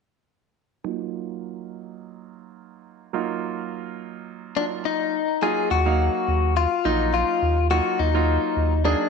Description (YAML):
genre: dance-pop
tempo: 105 BPM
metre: 4/4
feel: straight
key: Eb minor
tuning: A4 = 440 Hz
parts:
  - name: bright concert grand piano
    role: accompaniment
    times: 0.8-9.1 s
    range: Gb3 to F5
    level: -28 LUFS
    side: right 12 dB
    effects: low-pass filter
  - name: direct-recorded clean electric guitar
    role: melody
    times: 4.6-9.1 s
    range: D4 to Ab4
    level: -22 LUFS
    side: left 9 dB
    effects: none
  - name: warm sub bass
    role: bass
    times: 5.7-8.9 s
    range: Bb1 to Eb2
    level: -22 LUFS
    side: right 1 dB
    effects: none
room: moderate echo chamber reverb, RT60 1.9 s, small room ambience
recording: 1960s-style stereo with parts hard left and right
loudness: -21 LUFS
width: side -5 dB against mid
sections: 0.8-5.4 A section; 5.4-9.1 B section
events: filter sweep on grand piano 0.8-5.4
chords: 0.8 Ebmadd9; 5.1 N.C.; 5.4 Ebmadd9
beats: | 0.85 1.42 1.99 2.56 | 3.14 3.71 4.28 4.85 | 5.42 5.99 6.57 7.14 | 7.71 8.28 8.85